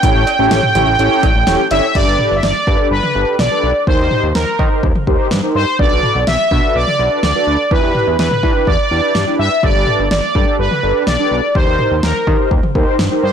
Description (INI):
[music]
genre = synth-pop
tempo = 125 BPM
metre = 4/4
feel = straight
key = G major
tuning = A4 = 438 Hz
[part]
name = analog synth brass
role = melody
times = 0.0-13.3 s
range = Bb4 to G5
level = -15 LUFS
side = right 1 dB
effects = chorus, analog delay
[part]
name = mellow synth brass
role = accompaniment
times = 0.0-13.3 s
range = C#4 to D5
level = -18 LUFS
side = left 1 dB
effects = chorus
[part]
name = fat analog bass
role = bass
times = 0.0-13.3 s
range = E1 to E3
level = -18 LUFS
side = equal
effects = tube saturation
[part]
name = deep house drum kit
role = drums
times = 0.0-13.1 s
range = cowbell, crash cymbal, hi-hat, kick drum, snare drum, toms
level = -17 LUFS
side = equal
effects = none
[sound]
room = light reverb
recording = blown-out, overdriven recording, overdrive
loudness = -12 LUFS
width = side -8 dB against mid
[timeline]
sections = 0.0-2.0 A section; 2.0-13.3 B section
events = none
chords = 0.0 A7; 2.0 Gadd9; 3.9 Eb6; 5.8 Bm7; 7.7 Em7; 9.6 Gadd9; 11.6 Eb6